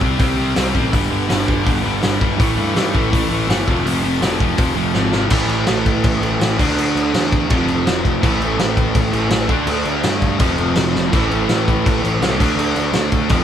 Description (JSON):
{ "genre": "punk rock", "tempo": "165 BPM", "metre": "4/4", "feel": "straight", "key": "A minor", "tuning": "A4 = 440 Hz", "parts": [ { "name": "crunchy overdriven guitar", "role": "riff", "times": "0.0-13.4 s", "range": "F2 to D4", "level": "-21 LUFS", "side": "right 6 dB", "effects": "none" }, { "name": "distorted electric guitar", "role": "riff", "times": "0.0-13.4 s", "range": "F2 to D4", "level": "-21 LUFS", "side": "left 8 dB", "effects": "overdrive" }, { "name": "fuzz picked electric bass", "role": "bass", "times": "0.0-13.4 s", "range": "F1 to G2", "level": "-22 LUFS", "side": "equal", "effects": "overdrive" }, { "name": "loose indie drum kit", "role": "drums", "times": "0.0-13.4 s", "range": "crash cymbal, hi-hat, kick drum, snare drum, splash cymbal", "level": "-18 LUFS", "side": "equal", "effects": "none" } ], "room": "light reverb", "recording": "band playing live in one room", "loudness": "-15 LUFS", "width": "side -9 dB against mid", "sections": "0.0-5.3 A section; 5.3-13.4 B section", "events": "drum fill 4.9-5.3, 10.9", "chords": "0.0 C5; 0.9 G5; 2.4 A5; 3.7 F5; 5.3 A5; 6.6 D5; 7.5 F5; 8.2 A5; 9.5 D5; 10.4 F5; 11.1 Am; 12.4 D5", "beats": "0.19 0.56 | 0.93 1.29 1.66 2.02 | 2.39 2.76 3.12 3.49 | 3.85 4.22 4.58 4.95 | 5.31 5.68 6.04 6.40 | 6.77 7.13 7.50 7.86 | 8.22 8.58 8.95 9.31 | 9.67 10.04 10.40 10.76 | 11.12 11.49 11.85 12.21 | 12.57 12.94 13.30" }